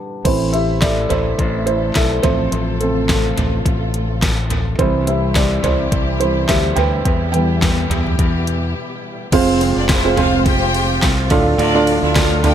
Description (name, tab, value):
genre	piano-driven pop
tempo	106 BPM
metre	4/4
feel	swing 56% on 16ths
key	unclear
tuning	A4 = 444 Hz
part	felt-muted upright piano	accompaniment	0.0-12.5 s	A2 to G5	-18 LUFS	right 2 dB	analog delay
part	warm symphonic string section	sustained chords	0.2-12.5 s	B2 to C5	-25 LUFS	left 1 dB	none
part	modern bright fingered electric bass	bass	0.2-12.5 s	F1 to E2	-20 LUFS	left 1 dB	none
part	pop drum kit	drums	0.3-12.5 s	crash cymbal, handclaps, hi-hat, kick drum, ride cymbal, snare drum, toms	-19 LUFS	equal	overdrive, analog delay
part	clear studio violin section	second line	9.3-12.5 s	C4 to G5	-22 LUFS	left 1 dB	none
room	moderate spring reverb, RT60 2.0 s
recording	echo-heavy mix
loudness	-14 LUFS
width	side -9 dB against mid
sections	0.3-9.3 A section; 9.3-12.5 B section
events	break 0.0, 8.8-9.3; felt piano solo 0.3-9.3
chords	0.3 Am; 2.2 F/A; 4.8 C; 7.1 Em; 9.3 Fm; 11.3 Dm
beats	| 0.25 0.82 1.39 1.95 | 2.52 3.09 3.65 4.22 | 4.79 5.36 5.92 6.49 | 7.06 7.62 8.19 8.76 | 9.32 9.89 10.46 11.02 | 11.59 12.16